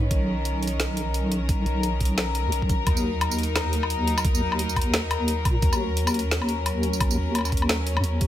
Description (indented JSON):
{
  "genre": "half-time drum and bass",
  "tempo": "174 BPM",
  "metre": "4/4",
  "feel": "swing 59% on 16ths, half-time",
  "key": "Eb minor",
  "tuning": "A4 = 440 Hz",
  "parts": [
    { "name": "rich studio string section", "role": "sustained chords", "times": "0.0-8.3 s", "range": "D#3 to Bb4", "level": "-28 LUFS", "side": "left 3 dB", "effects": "sidechain pumping" },
    { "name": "deep soft wobble bass", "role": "bass", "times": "0.0-8.3 s", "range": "B1 to Bb2", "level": "-25 LUFS", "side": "equal", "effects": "chorus" },
    { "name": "drum and bass drum kit", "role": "drums", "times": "0.1-8.3 s", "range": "hi-hat, snare drum, tambourine, woodblock", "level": "-28 LUFS", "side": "left 1 dB", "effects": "overdrive" },
    { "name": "electronic kick drum", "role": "drums", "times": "0.1-8.3 s", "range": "none", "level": "-24 LUFS", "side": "equal", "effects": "overdrive" }
  ],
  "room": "light reverb",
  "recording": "none",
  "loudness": "-22 LUFS",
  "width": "side -12 dB against mid",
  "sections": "0.0-8.3 A section",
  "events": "none",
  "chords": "0.0 Badd9; 2.9 Ebm"
}